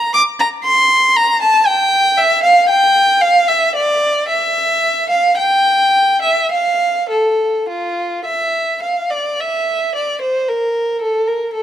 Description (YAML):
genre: classical, baroque-style suite movement for unaccompanied violin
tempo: 51-59 BPM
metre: 3/4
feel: rubato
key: unclear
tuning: A4 = 440 Hz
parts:
  - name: rich violin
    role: solo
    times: 0.0-11.6 s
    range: F4 to D6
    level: -12 LUFS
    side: equal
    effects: none
room: moderate recital hall reverb, RT60 1.8 s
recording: close, detailed microphones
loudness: -12 LUFS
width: side -10 dB against mid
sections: 0.0-9.9 A section; 9.9-11.6 A section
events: none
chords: none